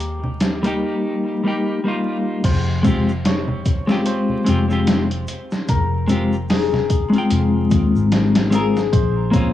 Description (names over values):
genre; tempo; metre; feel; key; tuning
trip hop; 74 BPM; 4/4; swing 58% on 16ths; F minor; A4 = 441 Hz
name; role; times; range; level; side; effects
cimbalom; melody; 0.0-9.5 s; G4 to Db5; -27 LUFS; left 5 dB; vintage 12-bit sampler grit, cassette tape, tape echo
vintage muted fingered electric bass; bass; 0.0-9.5 s; F1 to Eb2; -22 LUFS; left 1 dB; tube saturation
trip hop sampler-style drum kit; drums; 0.0-9.5 s; crash cymbal, hi-hat, kick drum, snare drum; -20 LUFS; equal; overdrive, cassette tape
tube shaker and congas; percussion; 0.0-9.5 s; none; -29 LUFS; right 3 dB; none
clean electric guitar; accompaniment; 0.6-9.5 s; G3 to G5; -19 LUFS; left 2 dB; harmonic tremolo, tape echo
room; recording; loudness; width
little or no reverb; home recording on cassette, vinyl crackle, small room ambience; -16 LUFS; side -12 dB against mid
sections
0.0-2.4 A section; 2.4-9.5 B section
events
none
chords
0.0 Eb; 2.4 Fmadd9; 8.9 Bbmadd9